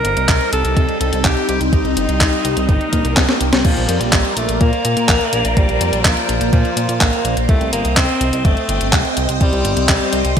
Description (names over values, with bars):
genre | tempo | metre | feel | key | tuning
italo disco | 125 BPM | 4/4 | straight | C dorian | A4 = 440 Hz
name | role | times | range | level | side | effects
bright alto saxophone | melody | 0.0-10.3 s | F3 to Bb4 | -21 LUFS | equal | digital delay
phased string machine | sustained chords | 0.0-10.4 s | G3 to G5 | -21 LUFS | equal | ensemble chorus, phaser
chorused synth bass | bass | 0.0-10.4 s | G1 to Bb2 | -20 LUFS | equal | none
clean 12-bit digital drum machine | drums | 0.0-10.4 s | crash cymbal, handclaps, hi-hat, snare drum | -19 LUFS | left 1 dB | overdrive, studio reverb, gated reverb
electronic kick drum | drums | 0.3-10.4 s | none | -16 LUFS | equal | studio reverb
swell | sound effects | 2.8-3.6 s | none | -27 LUFS | equal | none
room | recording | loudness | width
moderate lush hall reverb, RT60 1.9 s, digital ambience | bright 1980s-style digital production | -13 LUFS | side -8 dB against mid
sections
0.0-3.6 A section; 3.6-10.4 B section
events
swell 2.8-3.6; drum fill 3.2-3.6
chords
0.0 Cm; 3.6 Bbadd9; 7.5 Cm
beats
0.29 0.77 1.25 | 1.73 2.21 2.69 3.17 | 3.65 4.13 4.61 5.09 | 5.57 6.05 6.53 7.01 | 7.49 7.97 8.45 8.93 | 9.41 9.89 10.37